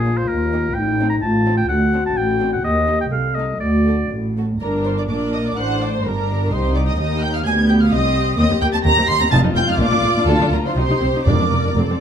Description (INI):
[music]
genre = quick classical-period movement for symphony orchestra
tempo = 126 BPM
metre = 2/4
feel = rubato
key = G minor, Bb major from 8.4 s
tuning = A4 = 440 Hz
[part]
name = warm oboe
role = second line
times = 0.0-4.1 s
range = Ab4 to Bb5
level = -22 LUFS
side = left 1 dB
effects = none
[part]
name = dark French horn section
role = sustained chords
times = 0.0-4.3 s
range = Eb4 to A4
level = -23 LUFS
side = left 4 dB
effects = none
[part]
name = dark chamber cello section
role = bass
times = 0.0-12.0 s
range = C2 to D3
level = -21 LUFS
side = equal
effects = none
[part]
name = warm chamber double bass section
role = bass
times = 0.0-11.8 s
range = F1 to Eb2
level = -22 LUFS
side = right 1 dB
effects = none
[part]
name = dark studio violin section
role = melody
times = 0.1-12.0 s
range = F4 to C7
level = -24 LUFS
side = right 1 dB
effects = none
[part]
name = warm chamber violin section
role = second line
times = 0.1-12.0 s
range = D4 to C6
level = -24 LUFS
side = right 1 dB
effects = none
[part]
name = warm chamber viola section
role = accompaniment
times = 0.1-12.0 s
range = A3 to C5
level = -24 LUFS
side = left 1 dB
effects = none
[part]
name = timpani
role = percussion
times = 9.3-11.7 s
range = F2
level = -23 LUFS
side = left 1 dB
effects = none
[sound]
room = wet stone room reverb, RT60 0.9 s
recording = dark, warm production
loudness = -16 LUFS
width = side -8 dB against mid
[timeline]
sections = 0.0-4.6 A section; 4.6-12.0 B section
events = none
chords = 0.3 Eb5; 0.8 Adim; 1.7 D7; 2.6 Eb; 3.1 Adim/C; 3.6 D; 4.6 Gm; 5.6 D7/A; 6.0 Gm; 6.5 Cm; 7.5 G/D; 7.9 Cm; 8.4 Cm7/Eb; 9.3 F7(no3); 9.8 Bb; 10.3 Bb/D; 10.8 Cm; 11.3 Bb/F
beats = 0.29 | 0.76 1.23 | 1.69 2.16 | 2.64 3.12 | 3.61 4.11 | 4.61 5.09 | 5.57 6.05 | 6.51 6.99 | 7.46 7.92 | 8.38 8.85 | 9.32 9.80 | 10.28 10.76 | 11.26 11.77